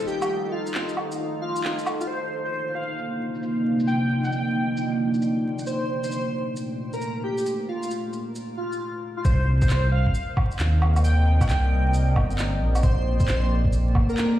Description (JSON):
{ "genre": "future garage", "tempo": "134 BPM", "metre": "4/4", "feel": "swing 65% on 16ths", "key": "C dorian", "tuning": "A4 = 439 Hz", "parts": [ { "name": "deep dark ambient pad", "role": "sustained chords", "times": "0.0-14.4 s", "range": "Bb2 to G5", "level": "-27 LUFS", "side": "equal", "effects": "chorus, built-in reverb, sidechain pumping" }, { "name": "electronic shaker, woodblock and handclaps", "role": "drums", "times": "0.0-14.3 s", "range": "none", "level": "-32 LUFS", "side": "right 1 dB", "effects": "overdrive, low-pass filter on perc, low-pass filter on snare" }, { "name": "airy dreamy lead", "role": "melody", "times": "0.1-14.3 s", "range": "F4 to G5", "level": "-29 LUFS", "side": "equal", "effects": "chorus, tape echo" }, { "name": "dark detuned saw bass", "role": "bass", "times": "9.2-13.9 s", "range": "G1 to Eb2", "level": "-20 LUFS", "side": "equal", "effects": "tube saturation" }, { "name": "electronic kick drum", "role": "drums", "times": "9.2-14.1 s", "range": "none", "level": "-22 LUFS", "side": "equal", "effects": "none" } ], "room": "moderate concert hall reverb, RT60 2.0 s", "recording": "played on a big sound system in a bare room, stone room reverb, vinyl crackle, lossy compression artefacts", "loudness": "-22 LUFS", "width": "side -13 dB against mid", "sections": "0.0-2.1 A section; 2.1-9.2 B section; 9.2-14.4 A section", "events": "band accent 1.6; filter sweep on drum 2.1-9.2", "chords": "0.0 F7; 2.1 Cm11; 5.7 Bbmaj7; 9.2 Cm11; 12.8 Bbmaj7" }